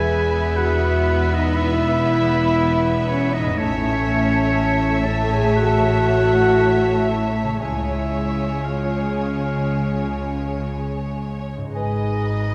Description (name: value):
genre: cinematic, emotional film score for orchestra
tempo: 59 BPM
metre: 4/4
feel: rubato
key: unclear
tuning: A4 = 440 Hz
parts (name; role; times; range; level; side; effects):
- warm studio violin section; melody; 0.0-12.5 s; C#5 to E5; -32 LUFS; equal; none
- bright oboe; second line; 0.0-12.5 s; C#5 to A5; -30 LUFS; equal; none
- mellow clarinet; second line; 0.0-12.1 s; B4 to E5; -36 LUFS; equal; none
- mellow hollow flute section; second line; 0.0-12.2 s; G#5 to B5; -32 LUFS; equal; none
- rich studio violin section; second line; 0.0-12.5 s; B4 to C#5; -37 LUFS; equal; none
- rich studio viola section; accompaniment; 0.0-12.5 s; G#3 to B3; -31 LUFS; equal; none
- dark French horn section; sustained chords; 0.0-12.5 s; C#4 to A4; -24 LUFS; equal; none
- concert harp; arpeggios; 0.0-12.5 s; E2 to C#5; -35 LUFS; equal; none
- bright studio cello section; bass; 0.0-12.5 s; E2 to C#3; -30 LUFS; equal; none
- rich chamber double bass section; bass; 0.0-12.5 s; E1 to C#2; -26 LUFS; equal; none
room: wet scoring stage reverb, RT60 1.6 s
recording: heard from further back in the room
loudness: -20 LUFS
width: mono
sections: 0.0-12.5 A section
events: none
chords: 0.0 E; 3.6 A; 7.6 C#; 11.7 G#m